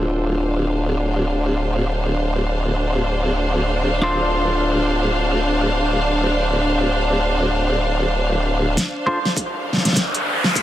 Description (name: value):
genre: glitch hop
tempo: free time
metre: none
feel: none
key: D minor pentatonic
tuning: A4 = 440 Hz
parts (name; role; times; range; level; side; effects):
- clean electric guitar; stabs; 0.0-9.2 s; D4 to C5; -24 LUFS; equal; spring reverb, sidechain pumping, low-pass filter, tape echo
- formant-sweep wobble bass; bass; 0.0-8.8 s; D1; -20 LUFS; equal; chorus, tube saturation
- warm studio string section; texture; 0.0-10.6 s; D4 to F5; -22 LUFS; equal; sidechain pumping
- electronic kick drum; drums; 8.8-10.6 s; none; -25 LUFS; equal; high-pass filter on kick
- pop drum kit; drums; 8.8-10.6 s; hi-hat, snare drum; -18 LUFS; equal; none
- riser; sound effects; 9.3-10.6 s; none; -23 LUFS; equal; none
room: moderate digital room reverb, RT60 1.1 s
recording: dense, heavily limited modern master, vinyl crackle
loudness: -17 LUFS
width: side -13 dB against mid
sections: 0.0-8.8 A section; 8.8-10.6 B section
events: filter sweep on clean electric guitar 0.0-8.8; build-up 8.8-10.6; drum fill 8.8-10.6; riser 9.3-10.6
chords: 0.0 Dm7